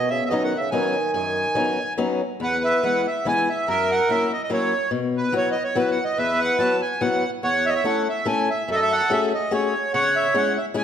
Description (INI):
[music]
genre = musette waltz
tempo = 143 BPM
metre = 3/4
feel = straight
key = E major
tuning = A4 = 440 Hz
[part]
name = accordion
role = melody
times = 0.0-10.8 s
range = A4 to A5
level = -21 LUFS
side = right 2 dB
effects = none
[part]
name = warm bassoon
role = second line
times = 0.0-1.9 s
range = B2 to D#3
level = -27 LUFS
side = right 4 dB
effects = none
[part]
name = fingerpicked swing-style acoustic guitar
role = accompaniment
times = 0.0-10.8 s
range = E2 to A4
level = -24 LUFS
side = left 4 dB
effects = none
[sound]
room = wet recital hall reverb, RT60 1.5 s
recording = none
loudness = -19 LUFS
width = side -8 dB against mid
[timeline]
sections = 0.0-2.4 A section; 2.4-10.8 B section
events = none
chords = 0.0 Badd9; 2.4 E; 3.7 F#7; 4.9 Bsus4; 6.2 Esus2; 7.4 A/E; 8.7 F#madd9; 9.9 C#m